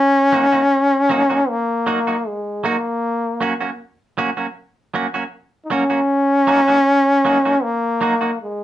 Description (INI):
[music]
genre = reggae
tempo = 78 BPM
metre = 4/4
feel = straight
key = Eb minor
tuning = A4 = 438 Hz
[part]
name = clear trombone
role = melody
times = 0.0-8.6 s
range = Ab3 to Eb4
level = -15 LUFS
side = left 1 dB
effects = none
[part]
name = semi-hollow electric guitar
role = accompaniment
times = 0.3-8.3 s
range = Gb3 to Gb4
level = -21 LUFS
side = right 4 dB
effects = tremolo
[sound]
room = moderate studio ambience, RT60 0.5 s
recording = band playing live in one room, nothing above 11.0 kHz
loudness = -15 LUFS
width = side -13 dB against mid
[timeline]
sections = 0.0-8.6 A section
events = none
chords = 0.0 Ebm; 3.0 Gb; 6.1 Ebm